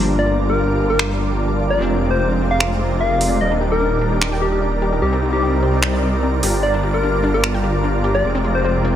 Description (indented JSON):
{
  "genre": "future bass",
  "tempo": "149 BPM",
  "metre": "4/4",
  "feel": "half-time",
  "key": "unclear",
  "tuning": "A4 = 439 Hz",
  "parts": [
    { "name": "glassy digital keys", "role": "accompaniment", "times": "0.0-3.4 s", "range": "F3 to D4", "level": "-26 LUFS", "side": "left 2 dB", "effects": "chorus, tape echo" },
    { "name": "ethereal airy pad", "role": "sustained chords", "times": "0.0-9.0 s", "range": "G4 to D6", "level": "-30 LUFS", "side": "right 2 dB", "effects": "ensemble chorus, built-in reverb" },
    { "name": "supersaw chords", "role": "riff", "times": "0.0-9.0 s", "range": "G3 to D5", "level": "-22 LUFS", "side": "right 1 dB", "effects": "wide subtle chorus, cassette tape, low-pass filter" },
    { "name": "wide detuned saw bass", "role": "bass", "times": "0.0-9.0 s", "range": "Eb1 to C2", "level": "-20 LUFS", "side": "equal", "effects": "chorus" },
    { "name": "soft struck synth lead", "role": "melody", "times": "0.2-8.7 s", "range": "G4 to F5", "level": "-22 LUFS", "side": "left 2 dB", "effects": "chorus, digital delay" },
    { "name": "big-room dance drum kit", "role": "drums", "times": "1.0-7.5 s", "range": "finger snaps, hi-hat", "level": "-22 LUFS", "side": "equal", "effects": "overdrive, low-pass filter on snare, low-pass filter on toms, low-pass filter on hats" },
    { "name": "wide unison pluck", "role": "arpeggios", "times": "3.5-8.9 s", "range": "C4 to G5", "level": "-27 LUFS", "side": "left 2 dB", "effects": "tape echo" }
  ],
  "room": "light reverb, digital ambience",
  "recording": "none",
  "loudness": "-16 LUFS",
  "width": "side -10 dB against mid",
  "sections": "0.0-9.0 A section",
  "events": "none",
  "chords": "0.0 Gm7; 1.8 Bb9/F; 3.4 Ebmaj7; 5.0 Cm9; 6.4 Gm7; 8.2 Bb9/F"
}